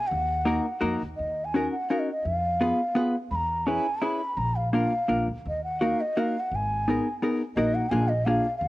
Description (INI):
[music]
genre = musette waltz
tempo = 170 BPM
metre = 3/4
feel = swing 54% on 8ths, rubato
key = Eb minor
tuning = A4 = 440 Hz
[part]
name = mellow hollow bansuri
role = melody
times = 0.0-8.7 s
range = Eb5 to B5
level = -28 LUFS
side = equal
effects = plate reverb, tape echo
[part]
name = upright bass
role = bass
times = 0.1-8.7 s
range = Ab1 to F2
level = -31 LUFS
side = equal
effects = none
[part]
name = hollow-body jazz guitar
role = accompaniment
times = 0.5-8.5 s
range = Bb3 to Cb5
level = -26 LUFS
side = left 1 dB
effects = cassette tape, plate reverb
[sound]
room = moderate booth ambience, RT60 0.2 s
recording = home recording on cassette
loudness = -24 LUFS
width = side -17 dB against mid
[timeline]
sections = 0.0-1.2 A section; 1.2-8.7 A section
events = none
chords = 0.1 Ebm; 1.2 Ebm7; 2.3 Fdim; 3.3 E6; 4.4 Bb; 5.4 Ebm; 6.5 Abmadd9; 7.6 Ebm/Bb; 7.9 Bb7